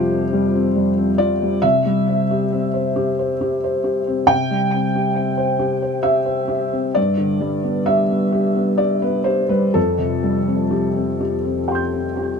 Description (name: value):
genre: neoclassical minimalist piano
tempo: 67 BPM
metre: 3/4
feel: uneven beats, rubato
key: C major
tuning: A4 = 440 Hz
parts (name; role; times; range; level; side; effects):
- felt-muted upright piano; solo; 0.0-12.4 s; F2 to G6; -17 LUFS; left 1 dB; tape echo
room: light reverb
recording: close, detailed microphones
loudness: -17 LUFS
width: side -5 dB against mid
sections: 0.0-12.4 A section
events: none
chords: 0.0 Fsus2; 1.6 C; 7.0 G; 9.8 Fsus2